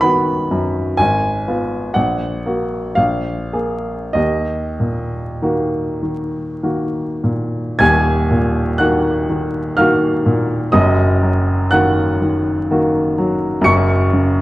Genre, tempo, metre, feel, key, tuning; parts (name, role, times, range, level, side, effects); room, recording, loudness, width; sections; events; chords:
classical, romantic nocturne for solo piano; 46-64 BPM; 3/4; rubato; Eb minor; A4 = 440 Hz
warm baby grand piano; solo; 0.0-14.4 s; Eb1 to Db7; -14 LUFS; equal
moderate recital hall reverb, RT60 1.5 s; worn, warbling old tape, cassette tape, vinyl crackle, warbly pitch drift; -15 LUFS; side -17 dB against mid
0.0-7.8 A section; 7.8-14.4 A section
0.0 B; 1.0 Fdim/Ab; 2.0 Gb/Bb; 3.0 Bb5; 4.1 Ebm; 10.7 Ebm/Gb; 13.7 Gb5